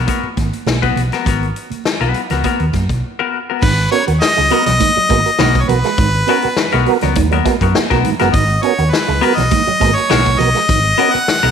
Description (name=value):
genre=funk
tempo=102 BPM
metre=4/4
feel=straight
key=G# minor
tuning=A4 = 441 Hz
part: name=semi-hollow electric guitar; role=accompaniment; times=0.0-11.5 s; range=B3 to B4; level=-19 LUFS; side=left 10 dB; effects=wide subtle chorus
part: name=hollow-body short-scale fingered electric bass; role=bass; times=0.0-11.5 s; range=F#1 to F#2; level=-17 LUFS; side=right 1 dB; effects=none
part: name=swinging big-band drum kit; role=drums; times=0.1-11.5 s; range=crash cymbal, hi-hat, kick drum, snare drum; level=-19 LUFS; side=left 2 dB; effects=none
part: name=congas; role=percussion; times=0.1-11.0 s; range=none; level=-25 LUFS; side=right 13 dB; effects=none
part: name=clear harmonica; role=melody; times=3.6-11.5 s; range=B4 to F#5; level=-15 LUFS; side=equal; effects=tape echo
part: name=mellow tonewheel organ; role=stabs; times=3.6-11.2 s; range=G#2 to A#4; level=-20 LUFS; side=right 12 dB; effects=chorus vibrato, slow rotary speaker
part: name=electric guitar with an envelope filter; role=riff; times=3.8-11.5 s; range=F#3 to C#4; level=-24 LUFS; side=right 13 dB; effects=wide subtle chorus
room=moderate echo chamber reverb, RT60 1.7 s, studio reverb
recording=1960s-style stereo with parts hard left and right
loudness=-12 LUFS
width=side -7 dB against mid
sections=0.0-3.6 A section; 3.6-11.5 B section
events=break 3.0-3.6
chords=0.0 G#m9 (rootless); 3.6 G#m9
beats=0.07 0.67 | 1.26 1.85 2.44 3.03 | 3.62 4.21 4.80 5.39 | 5.98 6.57 7.16 7.75 | 8.34 8.92 9.51 10.10 | 10.68 11.27